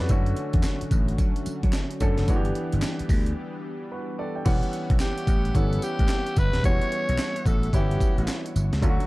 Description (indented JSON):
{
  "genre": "R&B, new jack swing",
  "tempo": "110 BPM",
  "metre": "4/4",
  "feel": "swing 63% on 16ths",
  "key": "E dorian",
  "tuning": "A4 = 440 Hz",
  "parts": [
    { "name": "clear baby grand piano", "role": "accompaniment", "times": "0.0-9.1 s", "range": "D3 to G5", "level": "-30 LUFS", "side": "equal", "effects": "none" },
    { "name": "warm analog pad", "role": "sustained chords", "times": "0.0-9.1 s", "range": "D3 to C#6", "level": "-37 LUFS", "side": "left 1 dB", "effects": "chorus" },
    { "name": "vintage slap bass", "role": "bass", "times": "0.0-9.0 s", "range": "D#1 to F#3", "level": "-26 LUFS", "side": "equal", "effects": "none" },
    { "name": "breakbeat sampler-style drum kit", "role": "drums", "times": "0.1-9.1 s", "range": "crash cymbal, handclaps, hi-hat, kick drum, snare drum, tambourine", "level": "-24 LUFS", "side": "equal", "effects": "none" },
    { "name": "raspy alto saxophone", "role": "melody", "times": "5.0-8.5 s", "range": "G4 to C#5", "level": "-29 LUFS", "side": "equal", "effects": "none" }
  ],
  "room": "little or no reverb",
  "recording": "dark, warm production",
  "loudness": "-22 LUFS",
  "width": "side -20 dB against mid",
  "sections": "0.0-4.5 A section; 4.5-9.1 B section",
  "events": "break 3.4-4.5",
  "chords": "0.1 Dmaj7; 2.3 G6; 4.5 Em69",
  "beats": "| 0.10 0.64 1.19 1.73 | 2.28 2.82 3.37 3.92 | 4.46 5.01 5.55 6.10 | 6.64 7.19 7.73 8.28 | 8.82"
}